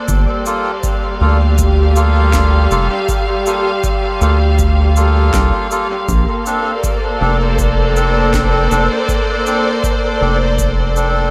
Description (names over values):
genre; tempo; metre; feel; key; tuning
ambient dub; 80 BPM; 4/4; swing 54% on 16ths; unclear; A4 = 438 Hz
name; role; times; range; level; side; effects
rich studio string section; sustained chords; 0.0-11.3 s; G3 to F5; -20 LUFS; equal; none
round analog bass; bass; 0.1-11.3 s; F1 to D2; -15 LUFS; equal; none
electronic cabasa and snare drum; drums; 0.1-11.1 s; none; -30 LUFS; equal; dub echo
electronic kick drum; drums; 0.1-10.7 s; none; -23 LUFS; equal; overdrive
melodica; stabs; 0.5-11.3 s; Bb3 to A4; -22 LUFS; equal; dub echo
room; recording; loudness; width
light reverb; none; -14 LUFS; mono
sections
0.0-11.3 A section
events
fade-out 10.1-11.3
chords
0.0 Bbmaj9